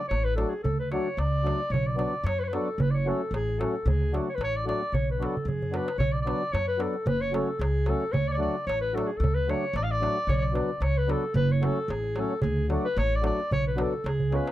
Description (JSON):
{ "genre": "balkan folk, Balkan wedding band", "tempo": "112 BPM", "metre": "2/4", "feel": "straight", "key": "B minor", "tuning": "A4 = 439 Hz", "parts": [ { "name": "clear clarinet", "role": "melody", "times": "0.0-14.5 s", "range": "G#4 to E#5", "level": "-30 LUFS", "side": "left 1 dB", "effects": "none" }, { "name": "upright bass", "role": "bass", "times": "0.1-14.4 s", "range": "F#1 to F#2", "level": "-28 LUFS", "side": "equal", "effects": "none" }, { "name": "darbuka", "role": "percussion", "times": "0.1-14.5 s", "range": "none", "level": "-31 LUFS", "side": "right 3 dB", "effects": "none" }, { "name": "mellow accordion", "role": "accompaniment", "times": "0.4-14.5 s", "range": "F#3 to F#4", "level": "-30 LUFS", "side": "left 2 dB", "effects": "none" } ], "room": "light reverb", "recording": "dark, warm production", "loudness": "-24 LUFS", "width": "side -14 dB against mid", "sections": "0.0-6.0 A section; 6.0-14.5 A section", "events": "drum fill 5.3-6.0, 14.2-14.5", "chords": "0.0 D; 1.7 Bm; 2.8 F#m; 3.9 D; 4.9 Bm; 7.1 F#m; 8.1 D; 10.3 Bm; 11.4 F#m; 12.4 D; 13.5 Bm" }